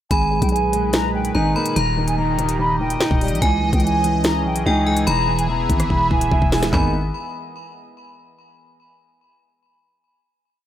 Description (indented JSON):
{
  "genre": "hip hop, drill",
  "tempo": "145 BPM",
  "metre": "4/4",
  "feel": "half-time",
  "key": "G# harmonic minor",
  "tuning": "A4 = 439 Hz",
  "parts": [
    { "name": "concert flute", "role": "melody", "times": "0.1-6.9 s", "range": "G5 to B5", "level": "-23 LUFS", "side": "right 1 dB", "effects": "tape echo" },
    { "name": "metallic FM bell", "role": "second line", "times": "0.1-6.9 s", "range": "G5 to B5", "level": "-28 LUFS", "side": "left 3 dB", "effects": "chorus, tape echo" },
    { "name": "dark grand piano", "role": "accompaniment", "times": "0.1-6.9 s", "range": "D#3 to E4", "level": "-24 LUFS", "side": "right 2 dB", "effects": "none" },
    { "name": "sweeping resonant pad", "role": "sustained chords", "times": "0.1-6.9 s", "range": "A#2 to E5", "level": "-29 LUFS", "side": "right 1 dB", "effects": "chorus" },
    { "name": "growling 808-style bass", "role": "bass", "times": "0.1-7.1 s", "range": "D#1 to C#2", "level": "-22 LUFS", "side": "equal", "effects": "none" },
    { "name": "drill drum kit", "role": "drums", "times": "0.1-6.8 s", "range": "handclaps, hi-hat, kick drum, rim click, snare drum, toms", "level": "-21 LUFS", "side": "equal", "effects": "none" }
  ],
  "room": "light reverb",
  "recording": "none",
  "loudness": "-16 LUFS",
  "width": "side -11 dB against mid",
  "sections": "0.1-6.7 hook; 6.7-8.4 final chord",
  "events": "drum fill 5.9-6.7",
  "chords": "0.1 G#madd9; 1.8 D#; 3.4 C#madd9; 5.1 E; 6.7 G#madd9"
}